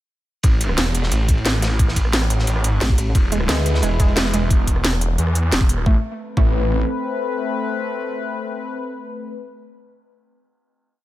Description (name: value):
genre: dark technical drum and bass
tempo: 177 BPM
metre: 4/4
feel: straight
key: A harmonic minor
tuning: A4 = 440 Hz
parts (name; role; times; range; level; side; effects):
- snarling distorted saw bass; bass; 0.4-6.8 s; E1 to E2; -19 LUFS; equal; distortion, sidechain pumping
- crunchy breakbeat drum kit; drums; 0.4-4.4 s; ride cymbal, snare drum; -30 LUFS; equal; high-pass filter on cymbals, high-pass filter on snare, high-pass filter on room
- drum and bass drum kit; drums; 0.4-5.8 s; hi-hat, rim click, snare drum; -23 LUFS; equal; none
- electronic kick drum; drums; 0.4-6.5 s; none; -16 LUFS; equal; none
- pulsing pluck wobble bass; bass; 2.8-3.1 s; A1; -21 LUFS; equal; chorus
- sweeping resonant pad; sustained chords; 3.1-9.3 s; G#3 to B4; -25 LUFS; left 3 dB; chorus, sidechain pumping
- warbly dusty pluck; arpeggios; 3.3-6.5 s; G#3 to A3; -26 LUFS; right 2 dB; chorus, sidechain pumping, tape echo
room: little or no reverb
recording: none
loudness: -17 LUFS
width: side -15 dB against mid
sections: 0.4-5.9 drop; 5.9-8.6 final chord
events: drop 0.4-5.9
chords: 0.4 A5; 3.1 E; 5.9 Amadd9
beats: | 0.44 0.78 1.12 1.46 | 1.79 2.13 2.47 2.81 | 3.15 3.49 3.83 4.17 | 4.50 4.84 5.18 5.52 | 5.86 6.20 6.54 6.88 | 7.22 7.56 7.89 8.23